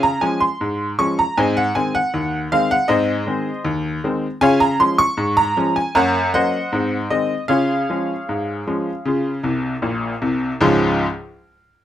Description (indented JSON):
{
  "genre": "ragtime piano",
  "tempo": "78 BPM",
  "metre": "2/4",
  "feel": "straight",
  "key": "Db major",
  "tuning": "A4 = 436 Hz",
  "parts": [
    { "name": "bright upright piano", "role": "solo", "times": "0.0-11.0 s", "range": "Bb1 to Db6", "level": "-17 LUFS", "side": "equal", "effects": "none" }
  ],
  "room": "light reverb",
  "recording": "none",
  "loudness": "-17 LUFS",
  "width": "side -11 dB against mid",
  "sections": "0.0-10.6 A section; 10.6-11.8 B section",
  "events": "upright piano fill 9.4-10.6",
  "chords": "0.0 Db; 1.4 Ab; 4.4 Db; 6.0 Gb; 6.7 Ab7; 7.5 Db"
}